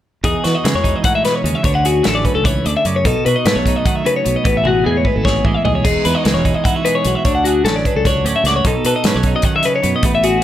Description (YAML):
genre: math rock and midwest emo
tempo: 300 BPM (eighths)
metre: 7/8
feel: straight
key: E major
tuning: A4 = 440 Hz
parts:
  - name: twelve-string electric guitar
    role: accompaniment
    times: 0.2-10.4 s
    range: E2 to A4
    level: -20 LUFS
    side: right 6 dB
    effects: none
  - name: twelve-string electric guitar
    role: arpeggios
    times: 0.2-10.4 s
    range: F#4 to F#5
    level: -17 LUFS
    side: left 4 dB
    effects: none
  - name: fingered electric bass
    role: bass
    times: 0.2-10.4 s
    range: E1 to E3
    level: -20 LUFS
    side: right 1 dB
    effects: none
  - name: loose indie drum kit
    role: drums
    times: 0.2-10.3 s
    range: crash cymbal, hi-hat, kick drum, snare drum, toms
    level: -19 LUFS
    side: equal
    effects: none
room: moderate studio reverb, RT60 0.8 s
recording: none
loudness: -13 LUFS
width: side -12 dB against mid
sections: 0.3-10.4 A section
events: drum fill 4.7-5.9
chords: 0.3 Emaj9; 1.7 Dmaj7; 3.1 B9; 4.5 Amaj9; 5.9 Emaj9; 7.3 Dmaj7; 8.6 B9